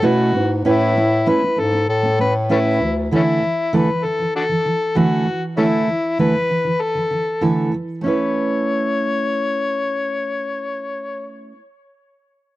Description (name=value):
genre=pop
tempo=97 BPM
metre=4/4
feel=straight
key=A major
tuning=A4 = 440 Hz
part: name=overdriven harmonica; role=melody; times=0.0-11.3 s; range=A3 to C#5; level=-20 LUFS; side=left 2 dB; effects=tape echo
part: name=fingerpicked steel-string acoustic guitar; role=accompaniment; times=0.0-11.6 s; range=D3 to B4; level=-20 LUFS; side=right 2 dB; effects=none
part: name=warm bass clarinet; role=bass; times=0.0-3.1 s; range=D2 to B2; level=-20 LUFS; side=left 1 dB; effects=none
room=little or no reverb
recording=dry, close 1970s-style studio recording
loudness=-16 LUFS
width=side -16 dB against mid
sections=0.0-8.0 A section; 8.0-10.5 B section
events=none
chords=0.0 Aadd9; 2.8 Dsus2; 8.0 Aadd9